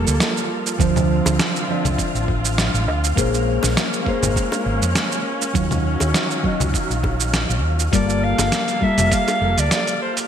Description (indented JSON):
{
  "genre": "sunset chillout",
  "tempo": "101 BPM",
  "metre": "4/4",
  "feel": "swing 54% on 16ths",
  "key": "unclear",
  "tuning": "A4 = 440 Hz",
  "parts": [
    { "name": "nylon-string guitar", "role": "accompaniment", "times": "0.0-10.3 s", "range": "F3 to E5", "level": "-24 LUFS", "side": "moving between left 6 dB and right 6 dB", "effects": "auto-pan, ping-pong delay, shimmer reverb" },
    { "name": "dark chamber string section", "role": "sustained chords", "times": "0.0-10.3 s", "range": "D3 to A4", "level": "-27 LUFS", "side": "left 2 dB", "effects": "shimmer reverb" },
    { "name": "hollow-body short-scale fingered electric bass", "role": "bass", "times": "0.0-9.7 s", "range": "F1 to F2", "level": "-21 LUFS", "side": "equal", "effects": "none" },
    { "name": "wind-like tuned noise texture", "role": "texture", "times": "0.0-10.3 s", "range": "F4 to F5", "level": "-30 LUFS", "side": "right 1 dB", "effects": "built-in reverb, analog chorus, shimmer reverb" },
    { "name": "dusty soul sampler-style drum kit", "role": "drums", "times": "0.1-10.3 s", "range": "congas, hi-hat, shaker, snare drum", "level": "-23 LUFS", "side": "right 1 dB", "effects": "overdrive, gated reverb" },
    { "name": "electronic kick drum", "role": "drums", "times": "0.8-9.2 s", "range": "none", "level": "-22 LUFS", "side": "equal", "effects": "overdrive" },
    { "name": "bongos", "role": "percussion", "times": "1.3-9.4 s", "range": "none", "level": "-31 LUFS", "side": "left 1 dB", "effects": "none" },
    { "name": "mellow soprano saxophone", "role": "melody", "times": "7.9-10.2 s", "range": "C5 to F5", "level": "-21 LUFS", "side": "equal", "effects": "ping-pong delay, shimmer reverb" }
  ],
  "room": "moderate lush hall reverb, RT60 2.1 s",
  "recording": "bright 1980s-style digital production",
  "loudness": "-17 LUFS",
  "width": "side -8 dB against mid",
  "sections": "0.0-10.3 A section",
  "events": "none",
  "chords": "0.0 Gm9; 0.8 Dm9; 3.2 Bbm9; 5.6 Ebm9; 7.9 Gm9",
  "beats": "0.20 | 0.80 1.39 1.99 2.58 | 3.17 3.77 4.36 4.96 | 5.55 6.15 6.74 7.33 | 7.93 8.52 9.12 9.71"
}